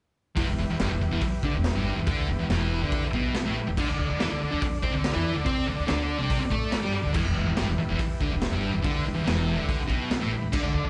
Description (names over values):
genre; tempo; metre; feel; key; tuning
garage rock duo or trio; 142 BPM; 4/4; straight; E minor; A4 = 440 Hz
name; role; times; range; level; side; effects
combo organ; sustained chords; 0.4-10.9 s; D4 to B5; -39 LUFS; equal; none
thick fuzz guitar; riff; 0.4-10.9 s; E2 to C5; -30 LUFS; equal; distortion
upright bass; bass; 0.4-10.9 s; E1 to C3; -32 LUFS; equal; none
raw garage drum kit; drums; 0.4-10.6 s; crash cymbal, hi-hat, kick drum, snare drum; -32 LUFS; equal; none
room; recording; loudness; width
light reverb; live gig heard through the venue's PA, club reverb, nothing above 10.9 kHz; -27 LUFS; mono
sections
0.4-10.9 A section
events
transistor combo organ fill 9.3-10.5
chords
0.4 Em; 3.8 D5; 7.2 Em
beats
| 0.37 0.80 1.22 1.65 | 2.08 2.50 2.92 3.35 | 3.77 4.20 4.62 5.04 | 5.46 5.89 6.31 6.73 | 7.15 7.58 8.00 8.42 | 8.84 9.27 9.69 10.11 | 10.53